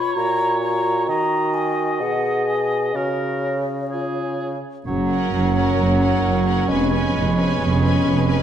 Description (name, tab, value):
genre	classical, dramatic, fast romantic movement for symphony orchestra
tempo	130 BPM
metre	4/4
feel	straight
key	F# major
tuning	A4 = 440 Hz
part	clear oboe	second line	0.0-8.4 s	G#4 to D#5	-29 LUFS	right 2 dB	none
part	mellow hollow concert flute	second line	0.0-8.4 s	C#5 to B5	-26 LUFS	left 2 dB	none
part	warm clarinet	second line	0.0-8.4 s	C#4 to G#4	-26 LUFS	equal	none
part	warm bassoon	accompaniment	0.2-8.4 s	A#2 to G#3	-25 LUFS	right 2 dB	none
part	mellow French horn section	sustained chords	4.9-8.4 s	A#3 to C#4	-25 LUFS	left 5 dB	none
part	bright symphonic cello section	bass	4.9-8.4 s	E#2 to F#2	-22 LUFS	right 2 dB	none
part	clear symphonic double bass section	bass	4.9-8.4 s	E#1 to F#1	-22 LUFS	right 3 dB	none
part	rich symphonic violin section	melody	5.1-8.4 s	F#5 to G#5	-31 LUFS	right 1 dB	none
part	clear symphonic violin section	second line	5.1-8.4 s	A#4 to B4	-30 LUFS	left 1 dB	none
part	clear studio viola section	accompaniment	5.1-8.4 s	C#4	-28 LUFS	equal	none
room	wet scoring stage reverb, RT60 1.4 s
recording	none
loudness	-18 LUFS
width	side -9 dB against mid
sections	0.0-4.9 A section; 4.9-8.4 B section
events	none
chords	0.2 F#/A#; 1.1 D#m; 2.0 G#m7/B; 2.9 F#/C#; 4.9 F#; 6.7 C#7/E#